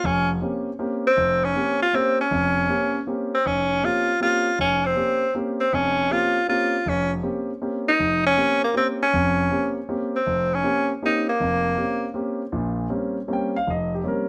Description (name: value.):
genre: jazz.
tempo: 159 BPM.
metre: 3/4.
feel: swing 66% on 8ths.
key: Bb dorian.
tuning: A4 = 442 Hz.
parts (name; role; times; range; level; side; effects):
edgy tenor saxophone; melody; 0.0-12.1 s; Bb3 to F4; -23 LUFS; equal; none.
warm concert grand piano; accompaniment; 0.0-14.3 s; F1 to G5; -28 LUFS; equal; none.
room: light reverb.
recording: close, detailed microphones.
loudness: -23 LUFS.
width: mono.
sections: 0.0-12.5 A section; 12.5-14.3 B section.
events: none.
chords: 0.0 Bbm69.